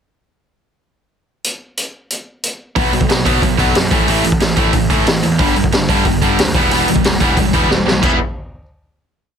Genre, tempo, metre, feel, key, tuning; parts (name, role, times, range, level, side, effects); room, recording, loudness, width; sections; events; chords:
punk rock; 182 BPM; 4/4; straight; E minor; A4 = 440 Hz
raw garage drum kit; drums; 1.4-8.1 s; crash cymbal, hi-hat, kick drum, snare drum; -16 LUFS; equal
cranked stack guitar; riff; 2.8-8.2 s; G2 to E4; -19 LUFS; left 15 dB; overdrive
tight distorted guitar; riff; 2.8-8.2 s; G2 to E4; -17 LUFS; right 15 dB; distortion
fuzz picked electric bass; bass; 2.8-8.2 s; E1 to B2; -21 LUFS; left 1 dB; overdrive
light reverb; dense, heavily limited modern master; -13 LUFS; side -7 dB against mid
1.4-2.8 pickup bar; 2.8-8.0 verse; 8.0-9.3 final chord
drum fill 7.7-8.0
1.4 N.C.; 2.8 B5; 3.9 A5; 5.4 G5; 6.5 Em